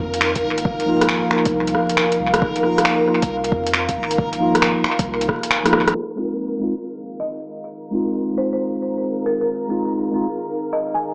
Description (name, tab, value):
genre	future garage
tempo	136 BPM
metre	4/4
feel	swing 67% on 16ths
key	F minor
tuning	A4 = 442 Hz
part	dark analog pad	sustained chords	0.0-11.1 s	Eb4 to F5	-26 LUFS	equal	chorus, sidechain pumping
part	soft dub sub bass	bass	0.0-5.9 s	F1 to F2	-36 LUFS	equal	tube saturation, sidechain pumping
part	backwards swelling texture	texture	0.0-11.1 s	Bb4	-32 LUFS	equal	built-in reverb
part	deep house drum kit	drums	0.1-5.9 s	finger snaps, hi-hat, rim click	-22 LUFS	equal	overdrive, low-pass filter on hats, low-pass filter on snare, low-pass filter on room, analog delay
part	electronic kick drum	drums	0.4-5.4 s	none	-26 LUFS	equal	overdrive
part	mellow tine electric piano	accompaniment	0.9-10.3 s	F3 to F4	-26 LUFS	equal	sidechain pumping, low-pass filter, analog delay
part	folk marimba with hard mallets	melody	7.2-11.1 s	Bb4 to Ab5	-27 LUFS	equal	analog delay
room	moderate plate reverb, RT60 2.0 s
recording	echo-heavy mix, vinyl crackle, low-pass filter, small speaker sound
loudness	-20 LUFS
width	mono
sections	0.0-5.9 A section; 5.9-11.1 B section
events	drum fill 5.6-5.9; band accent 5.8; filter sweep on analog synth pad 5.9-11.1; filter sweep on tine electric piano 5.9-11.1; filter sweep 5.9-11.1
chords	0.0 Fm7